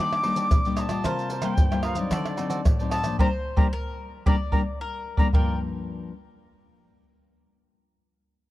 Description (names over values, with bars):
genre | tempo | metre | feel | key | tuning
samba and choro | 112 BPM | 4/4 | straight | G minor | A4 = 439 Hz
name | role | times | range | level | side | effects
jazz flute | melody | 0.0-5.6 s | D5 to D6 | -30 LUFS | left 1 dB | none
bowl-back mandolin | second line | 0.0-5.6 s | Bb4 to D5 | -36 LUFS | left 3 dB | none
cavaquinho | accompaniment | 0.0-5.5 s | D4 to G5 | -35 LUFS | right 4 dB | none
nylon-string guitar | accompaniment | 0.0-6.1 s | G2 to F4 | -29 LUFS | left 4 dB | none
maracas, pandeiro, tamborim, agogo bells and surdo | percussion | 0.1-5.5 s | none | -24 LUFS | equal | none
room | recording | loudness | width
small room ambience | dry, close 1970s-style studio recording | -22 LUFS | side -16 dB against mid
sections
0.0-5.3 A section; 5.3-7.5 B section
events
band accent 3.2-5.3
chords
0.0 Ebmaj7; 1.1 C7sus4; 2.1 D7b9; 3.2 Gm; 5.3 Gm7